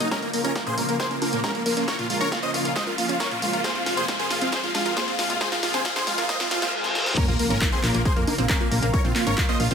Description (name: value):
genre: uplifting trance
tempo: 136 BPM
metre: 4/4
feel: straight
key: Bb minor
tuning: A4 = 440 Hz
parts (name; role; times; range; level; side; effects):
- big supersaw lead; melody; 0.0-9.7 s; Bb3 to Eb5; -27 LUFS; right 1 dB; phaser, sidechain pumping, ping-pong delay
- dark concert grand piano; second line; 0.0-9.7 s; Bb4 to Eb6; -33 LUFS; left 3 dB; vintage 12-bit sampler grit, sidechain pumping, ping-pong delay
- analog string pad; sustained chords; 0.0-9.7 s; C3 to F4; -30 LUFS; left 1 dB; ensemble chorus, sidechain pumping
- wide unison pluck; arpeggios; 0.0-9.7 s; Bb2 to Bb4; -31 LUFS; right 3 dB; auto-pan, sidechain pumping, ping-pong delay
- solid FM bass; bass; 0.0-9.7 s; F1 to F2; -29 LUFS; equal; sidechain pumping, high-pass filter
- punchy analog drum machine; drums; 0.0-9.7 s; congas, crash cymbal, handclaps, hi-hat, snare drum; -28 LUFS; equal; overdrive, high-pass filter on hats, high-pass filter on snare, high-pass filter on perc, high-pass filter on cymbals, high-pass filter on room
- riser, reverse cymbal and sub drop; sound effects; 0.2-8.9 s; none; -31 LUFS; left 2 dB; none
- electronic kick drum; drums; 0.1-9.5 s; none; -26 LUFS; equal; overdrive, high-pass filter on kick
room: moderate lush hall reverb, RT60 1.9 s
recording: high-pass filter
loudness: -21 LUFS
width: side -7 dB against mid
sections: 0.0-7.2 A section; 7.2-9.7 B section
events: build-up 0.0-7.2; filter sweep on synth arpeggio sound 0.0-7.2; filter sweep 0.0-7.2; drum fill 0.1-6.7, 6.8-7.2; riser 0.2-6.7; reverse cymbal 6.3-7.2; drop 7.2-9.7; impact 7.2-8.9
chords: 0.1 Bbm; 3.6 Fm; 7.2 Bbm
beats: | 0.12 0.56 1.00 1.44 | 1.88 2.32 2.76 3.20 | 3.64 4.09 4.53 4.97 | 5.41 5.85 6.29 6.73 | 7.17 7.62 8.06 8.50 | 8.94 9.38